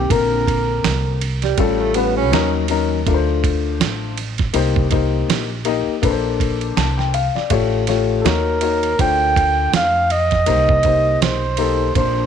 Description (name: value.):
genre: hip hop, jazz-hop.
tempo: 81 BPM.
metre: 4/4.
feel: swing 58% on 16ths.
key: C dorian.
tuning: A4 = 441 Hz.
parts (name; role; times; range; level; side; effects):
breathy flugelhorn; melody; 0.0-1.2, 8.2-12.3 s; G4 to G5; -18 LUFS; right 2 dB; none.
upright bass; bass; 0.0-12.3 s; A1 to F2; -21 LUFS; right 1 dB; none.
dark upright piano; accompaniment; 0.1-12.3 s; D3 to A5; -20 LUFS; left 12 dB; none.
dusty soul sampler-style drum kit; drums; 0.1-12.2 s; hi-hat, kick drum, ride cymbal, snare drum; -22 LUFS; right 5 dB; none.
breathy tenor saxophone; second line; 1.4-2.5 s; G3 to C#4; -22 LUFS; right 12 dB; none.
room: light reverb, studio reverb.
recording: 1960s-style stereo with parts hard left and right.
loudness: -15 LUFS.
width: side -8 dB against mid.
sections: 0.0-12.3 A section.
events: none.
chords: 0.1 Bbadd9; 1.6 A7b13; 2.3 Ebm7; 3.1 Dm7; 4.5 Cm7; 6.0 Bbmaj9; 7.5 A7b13; 8.3 Ebm7; 9.0 Dm7; 10.5 Cm7.